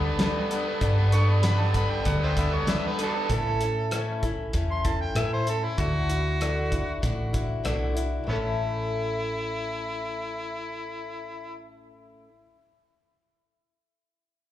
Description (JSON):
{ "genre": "folk rock and heartland rock", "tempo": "96 BPM", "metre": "4/4", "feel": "straight", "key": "A mixolydian", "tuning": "A4 = 445 Hz", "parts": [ { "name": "picked old ladder-braced acoustic guitar", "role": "accompaniment", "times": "0.0-12.3 s", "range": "A2 to A4", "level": "-32 LUFS", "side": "left 3 dB", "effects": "slapback echo" }, { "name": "raw garage guitar", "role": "riff", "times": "0.0-3.3 s", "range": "G3 to B4", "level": "-30 LUFS", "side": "right 1 dB", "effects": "overdrive, spring reverb, slapback echo" }, { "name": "hollow-body short-scale picked electric bass", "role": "bass", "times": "0.0-12.2 s", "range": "A1 to G3", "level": "-27 LUFS", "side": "equal", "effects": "none" }, { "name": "cloth-damped thuddy drum kit", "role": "drums", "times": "0.2-8.1 s", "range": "hi-hat, kick drum, rim click, snare drum", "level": "-30 LUFS", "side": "equal", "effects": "none" }, { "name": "overdriven harmonica", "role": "second line", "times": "1.1-11.5 s", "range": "B3 to C#6", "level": "-32 LUFS", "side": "right 1 dB", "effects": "slapback echo" } ], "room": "little or no reverb", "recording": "live gig heard through the venue's PA, club reverb", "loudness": "-24 LUFS", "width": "side -12 dB against mid", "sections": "0.0-8.3 A section; 8.3-10.8 B section", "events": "harmonica solo 0.0-8.3", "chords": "0.0 Gadd9; 3.3 A; 5.8 Dadd9; 8.3 A" }